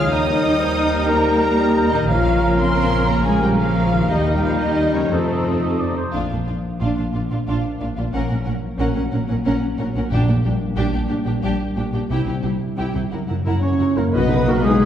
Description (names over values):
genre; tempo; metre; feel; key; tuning
cinematic, heroic adventure film score; 120 BPM (dotted quarters); 12/8; straight; unclear; A4 = 439 Hz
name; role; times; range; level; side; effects
warm symphonic violin section; melody; 0.0-14.9 s; G#4 to Eb6; -28 LUFS; left 2 dB; none
dark clarinet; second line; 0.0-5.8, 13.6-14.9 s; G4 to Eb5; -29 LUFS; left 1 dB; none
hollow small flute group; second line; 0.0-6.2, 14.1-14.9 s; B4 to G6; -32 LUFS; left 2 dB; none
rich symphonic violin section; second line; 0.0-14.9 s; G3 to D#6; -31 LUFS; left 1 dB; none
warm oboe; second line; 0.0-6.1, 13.6-14.9 s; G#4 to Eb5; -30 LUFS; right 1 dB; none
rich symphonic viola section; accompaniment; 0.0-14.9 s; B3 to Eb5; -26 LUFS; equal; none
dark French horn section; sustained chords; 0.0-6.0, 13.6-14.9 s; Db3 to Eb4; -21 LUFS; left 1 dB; none
concert harp; arpeggios; 0.0-14.9 s; Gb2 to F#5; -27 LUFS; left 4 dB; none
warm trumpet; stabs; 0.0-5.9, 14.5 s; F#4 to Bb4; -27 LUFS; right 3 dB; none
rich symphonic cello section; bass; 0.0-14.9 s; Gb2 to Eb4; -25 LUFS; right 2 dB; none
rich symphonic double bass section; bass; 0.0-14.9 s; Gb1 to F2; -24 LUFS; right 1 dB; none
timpani; percussion; 10.1-10.6 s; Bb2; -23 LUFS; right 1 dB; none
warm tuba; bass; 14.1-14.9 s; B1; -25 LUFS; right 3 dB; none
tam-tam; percussion; 14.1-14.9 s; none; -24 LUFS; equal; none
warm trombone section; sustained chords; 14.5 s; D#3 to B3; -30 LUFS; equal; none
room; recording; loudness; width
wet scoring stage reverb, RT60 1.9 s; heard from further back in the room, lossy compression artefacts; -17 LUFS; side -10 dB against mid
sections
0.0-6.1 A section; 6.1-14.1 B section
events
band accent 14.1-14.5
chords
0.1 Eb; 2.1 Bbm; 4.1 Eb; 5.1 F7; 6.1 Bb; 8.1 Gb/Bb; 10.1 Gm/Bb; 12.1 C; 13.1 Gb7; 14.1 B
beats
| 0.10 0.60 1.10 1.59 | 2.09 2.59 3.09 3.59 | 4.09 4.60 5.12 5.63 | 6.15 6.65 7.15 7.65 | 8.14 8.63 9.13 9.62 | 10.11 10.60 11.09 11.59 | 12.09 12.60 13.11 13.62 | 14.14 14.64